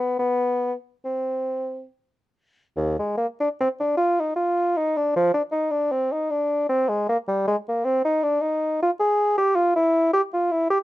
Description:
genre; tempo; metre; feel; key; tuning
classical, baroque-style fantasia for unaccompanied bassoon; 68-81 BPM; 3/4; rubato; Eb major; A4 = 440 Hz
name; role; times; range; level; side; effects
dark bassoon; solo; 0.0-10.8 s; Eb2 to Ab4; -20 LUFS; equal; none
room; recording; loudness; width
light reverb; close, detailed microphones; -20 LUFS; side -16 dB against mid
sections
0.0-2.8 A section; 2.8-10.8 A section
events
none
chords
none

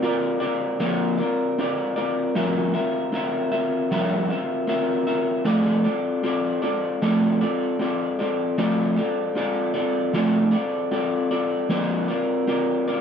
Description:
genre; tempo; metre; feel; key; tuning
indie pop; 77 BPM; 4/4; swing 55% on 16ths; F major; A4 = 440 Hz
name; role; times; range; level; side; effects
electric guitar through a small old amp; solo; 0.0-13.0 s; F3 to E5; -21 LUFS; equal; wide subtle chorus, warbly pitch drift
room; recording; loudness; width
light reverb; dry, close 1970s-style studio recording; -21 LUFS; side -7 dB against mid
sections
0.0-5.5 A section; 5.5-13.0 B section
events
none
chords
0.0 Bbadd9; 2.4 C7/F; 5.5 F6; 11.7 Bbadd9/F

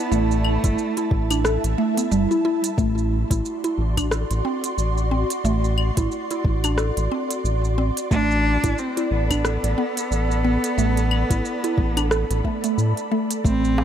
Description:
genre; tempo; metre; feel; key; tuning
organic downtempo; 90 BPM; 4/4; swing 58% on 16ths; unclear; A4 = 439 Hz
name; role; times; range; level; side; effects
clear cello; melody; 0.0-1.5, 8.1-13.8 s; A3 to D4; -26 LUFS; equal; ping-pong delay
ethereal airy pad; sustained chords; 0.0-13.8 s; E4 to C6; -28 LUFS; right 2 dB; ensemble chorus, built-in reverb, sidechain pumping
mallet-like synth pluck; arpeggios; 0.1-13.8 s; G3 to A4; -25 LUFS; right 1 dB; chorus, phaser, cassette tape, tape echo
round analog bass; bass; 0.1-13.8 s; G1 to A2; -22 LUFS; equal; none
organic electronic drum kit; drums; 0.1-13.8 s; claves, hi-hat, rim click, shaker; -28 LUFS; equal; overdrive
electronic kick drum; drums; 0.6-13.6 s; none; -23 LUFS; equal; overdrive
darbuka; percussion; 13.8 s; none; -24 LUFS; right 2 dB; none
room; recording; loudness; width
little or no reverb; none; -19 LUFS; side -9 dB against mid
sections
0.0-13.8 A section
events
none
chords
0.0 Esus4; 2.8 D7/A; 8.1 Bm7/A

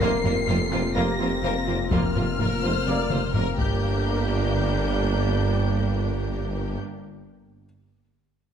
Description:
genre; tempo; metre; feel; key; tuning
cinematic, hybrid orchestral and electronic film score; 126 BPM; 4/4; straight; G minor; A4 = 441 Hz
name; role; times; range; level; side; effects
dark symphonic violin section; melody; 0.0-6.8 s; F6 to C7; -32 LUFS; left 6 dB; none
warm symphonic violin section; second line; 0.0-6.8 s; G4 to D5; -34 LUFS; left 5 dB; none
warm symphonic viola section; accompaniment; 0.0-6.8 s; Bb3 to F4; -33 LUFS; right 1 dB; none
clear trombone section; sustained chords; 0.0-6.8 s; C3 to Bb3; -35 LUFS; right 2 dB; none
dark French horn section; sustained chords; 0.0-6.8 s; Bb3 to Bb4; -34 LUFS; left 5 dB; none
warm analog pad; sustained chords; 0.0-6.8 s; C3 to Bb4; -32 LUFS; equal; chorus
harp-like synth pluck; arpeggios; 0.0-3.2 s; F3 to F4; -33 LUFS; left 4 dB; none
clear tuba; bass; 0.0-6.8 s; F1 to G1; -32 LUFS; right 4 dB; none
dark detuned saw bass; bass; 0.0-6.8 s; F1 to G1; -32 LUFS; left 1 dB; none
rich symphonic double bass section; bass; 0.0-6.8 s; F1 to G1; -30 LUFS; right 4 dB; none
warm chamber cello section; bass; 0.0-6.8 s; F2 to G2; -30 LUFS; right 2 dB; none
taiko ensemble; drums; 0.0-4.5 s; none; -28 LUFS; left 1 dB; none
felt-muted upright piano; texture; 0.0-3.9 s; none; barely audible; none; none
room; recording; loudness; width
wet scoring stage reverb, RT60 1.5 s; none; -22 LUFS; side -8 dB against mid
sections
0.0-3.8 A section; 3.8-7.6 B section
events
drum fill 3.1-3.8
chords
0.0 Fsus4; 3.6 Gm

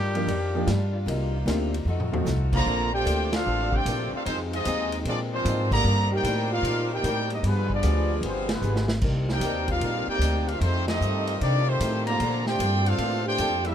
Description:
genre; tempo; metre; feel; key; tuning
jazz, big band swing; 151 BPM; 4/4; swing 67% on 8ths; Bb major; A4 = 441 Hz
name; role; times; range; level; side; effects
bright trumpet; melody; 0.0-0.7 s; G4; -31 LUFS; left 2 dB; none
picked swing-style acoustic guitar; accompaniment; 0.0-13.7 s; Bb2 to C5; -35 LUFS; left 4 dB; none
warm saxophone section; sustained chords; 0.0-13.7 s; C3 to Bb4; -35 LUFS; left 2 dB; none
upright bass; bass; 0.0-13.7 s; G1 to C3; -26 LUFS; equal; none
vintage drum kit; drums; 0.1-13.7 s; crash cymbal, hi-hat, kick drum, ride cymbal, snare drum, toms; -33 LUFS; equal; none
clear upright piano; accompaniment; 0.2-2.3 s; Eb3 to G4; -30 LUFS; right 1 dB; none
clear trombone section; second line; 2.5-13.7 s; D3 to G4; -31 LUFS; right 2 dB; none
warm trumpet section; melody; 2.6-13.7 s; Ab3 to Bb5; -28 LUFS; equal; none
room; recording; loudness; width
light reverb; none; -22 LUFS; side -9 dB against mid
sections
0.0-2.7 A section; 2.7-13.7 B section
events
trumpet solo 0.0-2.7; drum fill 1.9-2.3, 8.6-9.0; band accent 3.3, 5.6, 8.4, 10.8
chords
0.0 Ebmaj9; 1.1 Cm11; 1.9 F7b9; 2.7 Bbmaj9; 4.3 Fm7; 5.1 Bb9; 5.8 Ebmaj7; 7.4 G7b9; 9.0 Cm9; 10.6 F9; 12.2 Bbmaj9

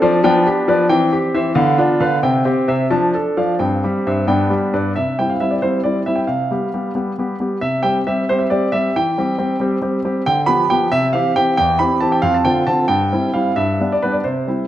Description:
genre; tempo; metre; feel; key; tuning
classical-period piano sonatina; 90 BPM (dotted quarters); 6/8; straight; C major; A4 = 441 Hz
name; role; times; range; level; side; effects
clear grand piano; solo; 0.0-14.7 s; E2 to B5; -15 LUFS; equal; none
room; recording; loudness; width
wet recital hall reverb, RT60 1.3 s; none; -15 LUFS; side -12 dB against mid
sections
0.0-5.0 A section; 5.0-14.7 B section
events
none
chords
0.2 G7/F; 0.9 C/E; 1.6 Bdim/D; 2.2 C; 2.9 Dm/F; 3.6 C/G; 4.3 G; 5.0 C; 6.3 G/C; 7.6 C5; 9.0 C/E; 10.3 G7/D; 10.9 C; 11.6 C/E; 12.3 Dm7/F; 12.9 C/G; 13.6 G

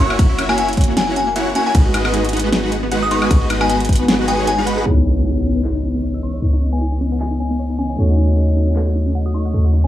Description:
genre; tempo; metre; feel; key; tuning
future bass; 154 BPM; 4/4; swing 55% on 16ths, half-time; C# minor; A4 = 440 Hz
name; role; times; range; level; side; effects
glassy synth bell; melody; 0.0-9.9 s; G#5 to E6; -23 LUFS; left 2 dB; chorus, tremolo, sidechain pumping, dub echo
ethereal airy pad; sustained chords; 0.0-9.9 s; C#3 to D#5; -27 LUFS; left 3 dB; ensemble chorus, built-in reverb, sidechain pumping
wide unison pluck; arpeggios; 0.0-9.9 s; A#3 to F#5; -25 LUFS; equal; cassette tape, sidechain pumping, dub echo
supersaw chords; riff; 0.0-4.8 s; G#3 to G#5; -21 LUFS; equal; sidechain pumping, dub echo
warm 808-style bass; bass; 0.0-9.9 s; F#1 to D#2; -19 LUFS; equal; sidechain pumping
pop drum kit; drums; 0.1-8.8 s; handclaps, hi-hat, ride cymbal, snare drum, woodblock; -22 LUFS; equal; overdrive
electronic kick drum; drums; 0.2-4.0 s; none; -13 LUFS; equal; overdrive
bell-like tine electric piano; accompaniment; 4.8-9.9 s; A3 to C#5; -24 LUFS; right 1 dB; fast stereo tremolo, sidechain pumping, dub echo
impact; sound effects; 4.9-6.4 s; none; -22 LUFS; equal; none
room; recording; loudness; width
light reverb; low-pass filter, small room ambience; -14 LUFS; side -12 dB against mid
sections
0.0-4.9 A section; 4.9-9.9 B section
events
drop 0.0-4.9; impact 4.9-6.4; filter sweep 4.9-9.9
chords
0.0 F#7; 1.7 G#m7; 4.9 C#m9; 8.0 D#m7b5

